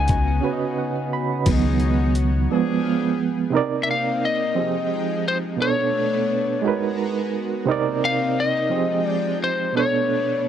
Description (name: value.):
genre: slow six-eight R&B.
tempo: 58 BPM (dotted quarters).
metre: 6/8.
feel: straight.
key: unclear.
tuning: A4 = 440 Hz.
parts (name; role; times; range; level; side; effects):
lightly driven lead guitar; melody; 0.0-10.5 s; C5 to Ab5; -23 LUFS; left 4 dB; tape echo.
barky reed electric piano; accompaniment; 0.0-10.5 s; B2 to Cb6; -23 LUFS; right 7 dB; tremolo.
lush unison pad; sustained chords; 0.0-10.5 s; C3 to Bb5; -29 LUFS; left 4 dB; chorus.
deep dub fingered electric bass; bass; 0.0-2.5 s; Db2; -20 LUFS; left 1 dB; none.
dusty soul sampler-style drum kit; drums; 0.1-2.3 s; crash cymbal, hi-hat, kick drum; -22 LUFS; left 1 dB; none.
warm horn section; stabs; 1.5-3.2 s; Cb3 to Ab4; -30 LUFS; left 7 dB; none.
room: little or no reverb.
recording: dry, close 1970s-style studio recording.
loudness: -19 LUFS.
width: side -9 dB against mid.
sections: 0.0-1.5 A section; 1.5-3.5 B section; 3.5-10.5 C section.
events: lead electric guitar solo 0.0-1.5; break 0.4-1.5, 2.5-3.5; reed electric piano fill 0.4-1.5; reed electric piano solo 1.5-3.5.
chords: 0.0 Db9sus4; 2.5 G7b9; 3.5 Cm9; 4.6 Fm9; 5.6 Bm9; 6.6 Abm9; 7.7 Cm9; 8.7 Fm9; 9.7 Bm9.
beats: 0.43 | 1.47 2.50 | 3.54 4.57 | 5.61 6.64 | 7.67 8.71 | 9.74.